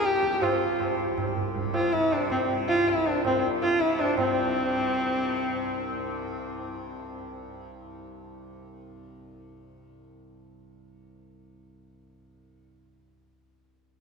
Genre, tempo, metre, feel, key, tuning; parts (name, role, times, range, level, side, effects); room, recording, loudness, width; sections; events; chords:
indian classical, Hindustani; 161 BPM; 5/4; straight; A4 = 437 Hz
warm sarangi; melody; 0.0-6.8 s; C4 to G4; -26 LUFS; equal
tanpura; drone; 0.0-13.1 s; C2 to C3; -38 LUFS; left 1 dB
tabla; percussion; 0.0-4.3 s; -31 LUFS; right 1 dB
wet cathedral reverb, RT60 6.3 s; recorded in a church or concert hall; -24 LUFS; side -5 dB against mid
0.0-4.2 A section; 4.2-6.0 B section
speeding up 0.0-6.0